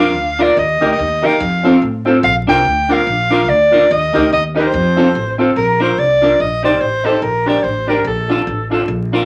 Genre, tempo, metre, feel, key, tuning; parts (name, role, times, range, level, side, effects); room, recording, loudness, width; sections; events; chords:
ska; 144 BPM; 4/4; swing 60% on 8ths; Bb major; A4 = 442 Hz
breathy soprano saxophone; melody; 0.0-8.7 s; A4 to G5; -17 LUFS; equal
clean electric guitar; accompaniment; 0.0-9.2 s; C4 to C5; -20 LUFS; equal; phaser, dub echo
dark upright piano; stabs; 0.0-9.2 s; C4 to C5; -21 LUFS; equal
upright bass; bass; 0.0-9.2 s; A1 to A2; -24 LUFS; equal
wet small room ambience, RT60 0.5 s; vinyl crackle; -14 LUFS; mono
0.0-5.6 A section; 5.6-9.2 B section
0.0 Bb; 0.6 Eb; 1.4 F; 2.2 Bb; 3.9 Eb; 4.7 F; 5.6 Bb; 6.4 Cm/Bb; 7.2 Gm/Bb; 8.1 Dm/Bb